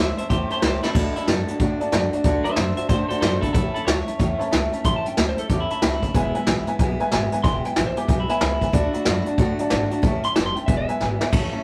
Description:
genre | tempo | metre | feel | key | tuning
rockabilly | 185 BPM | 4/4 | swing 63% on 8ths | A major | A4 = 440 Hz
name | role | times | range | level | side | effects
clean electric guitar | melody | 0.0-11.3 s | E4 to C6 | -30 LUFS | equal | none
dark upright piano | accompaniment | 0.0-11.6 s | B4 to B5 | -30 LUFS | equal | none
picked steel-string acoustic guitar | accompaniment | 0.0-11.6 s | E2 to F#4 | -30 LUFS | equal | none
upright bass | bass | 0.0-11.6 s | E1 to A2 | -30 LUFS | equal | none
vintage brush drum kit | drums | 0.2-11.4 s | crash cymbal, hi-hat, kick drum, snare drum | -25 LUFS | equal | none
room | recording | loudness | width
moderate small room ambience, RT60 0.5 s | rough rehearsal-room recording | -22 LUFS | mono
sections
0.0-11.3 A section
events
drum fill 0.8, 11.0-11.3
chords
0.0 A; 1.0 D; 3.5 A; 6.1 E; 8.7 D; 10.0 A; 10.7 E

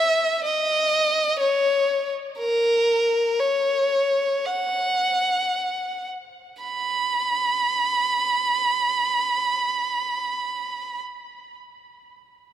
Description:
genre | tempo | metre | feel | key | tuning
pop | 54-63 BPM | 4/4 | straight | B major | A4 = 441 Hz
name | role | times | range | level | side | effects
rich violin | melody | 0.0-11.0 s | A#4 to B5 | -21 LUFS | equal | none
room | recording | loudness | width
moderate lush hall reverb, RT60 2.7 s | none | -20 LUFS | side -10 dB against mid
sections
0.0-6.6 A section; 6.6-11.0 B section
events
slowing down 0.0-6.6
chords
none

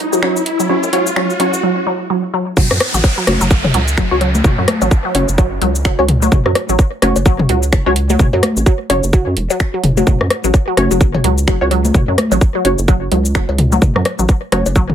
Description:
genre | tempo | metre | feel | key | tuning
minimal techno | 128 BPM | 4/4 | swing 59% on 16ths | F# minor | A4 = 440 Hz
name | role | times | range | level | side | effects
rubbery square bass | bass | 0.0-14.9 s | E1 to F#2 | -18 LUFS | equal | sidechain pumping, high-pass filter
riser and downlifter | sound effects | 0.0-6.3 s | none | -21 LUFS | equal | none
pulsing gated texture | texture | 0.0-1.7 s | G#3 to E4 | -30 LUFS | left 2 dB | none
resonant blip pluck | riff | 0.1-14.8 s | F#3 | -19 LUFS | right 1 dB | phaser, sidechain pumping, tape echo
booming analog drum machine | drums | 0.1-14.9 s | cabasa, finger snaps, hi-hat | -22 LUFS | equal | none
filtered dub chord stab | stabs | 0.2-14.6 s | C#4 to C#5 | -19 LUFS | left 1 dB | ensemble chorus, tape echo
electronic kick drum | drums | 2.6-14.9 s | none | -12 LUFS | equal | none
organic electronic drum kit | percussion | 2.6-14.9 s | congas, cowbell, rim click, toms | -17 LUFS | left 2 dB | overdrive, tape echo
room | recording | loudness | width
light reverb | none | -12 LUFS | side -10 dB against mid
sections
0.0-2.6 A section; 2.6-14.9 B section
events
build-up 0.0-2.6; riser 0.0-1.6; filter sweep on synth pluck 0.0-2.6; break 1.6-2.6; drop 2.6-14.9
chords
0.0 F#5

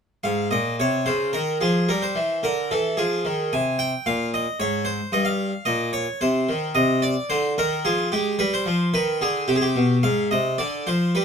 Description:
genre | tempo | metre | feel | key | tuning
classical, baroque-style suite movement for harpsichord | 110 BPM | 3/4 | rubato | F minor, C minor from 6.8 s | A4 = 439 Hz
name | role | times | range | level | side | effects
harpsichord | solo | 0.2-11.2 s | G2 to Ab5 | -20 LUFS | equal | none
room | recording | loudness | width
little or no reverb | close, detailed microphones | -20 LUFS | side -6 dB against mid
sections
0.2-11.2 A section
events
none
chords
0.2 Fm/Ab; 1.9 C13; 3.0 Fm; 3.5 Ab; 5.1 Gm7b5; 6.2 Cm; 7.8 Fmadd9; 8.4 G; 10.0 Ab; 10.6 Dm7

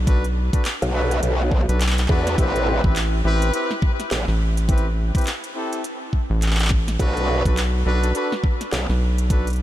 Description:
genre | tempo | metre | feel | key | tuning
glitch hop | 104 BPM | 4/4 | swing 60% on 16ths | A dorian | A4 = 440 Hz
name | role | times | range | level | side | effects
rubbery square bass | bass | 0.0-9.6 s | A1 to B1 | -20 LUFS | equal | none
clear horn section | stabs | 0.1-9.5 s | C4 to B4 | -26 LUFS | equal | vintage 12-bit sampler grit, sidechain pumping, ping-pong delay
electronic kick drum | drums | 0.1-9.4 s | none | -20 LUFS | equal | none
pop drum kit | drums | 0.1-9.6 s | handclaps, hi-hat, snare drum | -29 LUFS | equal | none
growl bass | bass | 0.8-8.9 s | A1 to E2 | -20 LUFS | equal | chorus
room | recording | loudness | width
light reverb, digital ambience | none | -18 LUFS | side -13 dB against mid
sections
0.0-9.6 A section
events
none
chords
0.0 Bm7; 2.4 Am7; 7.0 Bm7

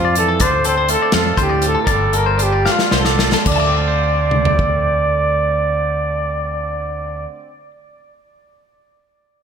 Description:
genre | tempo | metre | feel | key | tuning
math rock and midwest emo | 71-83 BPM (dotted quarters) | 6/8 | straight | D minor | A4 = 440 Hz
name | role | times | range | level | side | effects
breathy trumpet | melody | 0.0-7.3 s | F4 to D5 | -19 LUFS | right 1 dB | slapback echo, analog delay
twangy electric guitar | accompaniment | 0.0-7.7 s | A2 to C5 | -24 LUFS | right 8 dB | wide subtle chorus, slapback echo
clean electric guitar | arpeggios | 0.0-7.4 s | A4 to D6 | -21 LUFS | left 5 dB | slapback echo, analog delay
fingered electric bass | bass | 0.0-7.3 s | G1 to F2 | -21 LUFS | equal | none
modern studio drum kit | drums | 0.2-4.7 s | crash cymbal, hi-hat, kick drum, snare drum, toms | -19 LUFS | equal | none
room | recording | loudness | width
moderate recital hall reverb, RT60 1.4 s, studio ambience | big arena sound | -14 LUFS | side -7 dB against mid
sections
0.0-3.5 A section; 3.5-6.8 B section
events
slowing down 0.4-3.5; drum fill 2.6-3.5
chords
0.4 Dm7; 1.9 Gsus2; 3.5 Dm7

